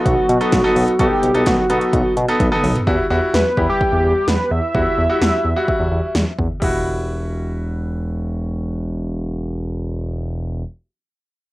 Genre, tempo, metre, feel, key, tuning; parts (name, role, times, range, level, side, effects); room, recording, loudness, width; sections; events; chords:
synth-pop; 128 BPM; 4/4; straight; E minor; A4 = 441 Hz
wide unison lead; melody; 0.0-6.2 s; F#4 to E5; -18 LUFS; equal; low-pass filter, cassette tape, analog delay
bright grand piano; accompaniment; 0.0-10.7 s; G3 to A4; -21 LUFS; equal; low-pass filter, cassette tape
smooth synth bass; bass; 0.1-10.6 s; E1 to B2; -21 LUFS; equal
80s electronic pad drums; drums; 0.1-6.7 s; crash cymbal, hi-hat, kick drum, snare drum, toms; -21 LUFS; equal; gated reverb on snare and toms, overdrive, cassette tape
light reverb; home recording on cassette; -16 LUFS; side -18 dB against mid
0.0-2.9 A section; 2.9-6.6 B section; 6.6-10.4 C section
drum fill 2.4-2.9; filter sweep 2.9-6.6
0.0 B7; 2.9 Emadd9